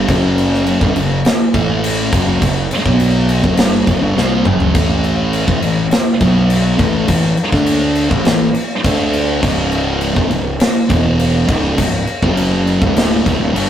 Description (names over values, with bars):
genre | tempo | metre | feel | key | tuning
stoner and doom metal | 103 BPM | 4/4 | straight | unclear | A4 = 437 Hz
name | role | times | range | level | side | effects
thick fuzz guitar | riff | 0.0-13.7 s | C#2 to D4 | -15 LUFS | equal | distortion
fuzz fingered electric bass | bass | 0.0-13.7 s | C#1 to D2 | -21 LUFS | equal | overdrive
big rock drum kit | drums | 0.1-13.7 s | crash cymbal, kick drum, snare drum, splash cymbal, toms | -16 LUFS | equal | none
room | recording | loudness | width
light reverb | rough rehearsal-room recording | -12 LUFS | side -10 dB against mid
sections
0.0-13.7 A section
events
drum fill 4.2-4.8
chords
0.1 F#5; 1.5 A5; 2.1 F#5; 2.9 B5; 3.4 F#5; 4.8 A5; 6.2 B5; 6.8 A5; 7.5 D5; 8.1 A5; 8.8 D5; 9.4 C#5; 10.9 E5; 11.5 C#5; 12.2 F#5; 12.8 C#5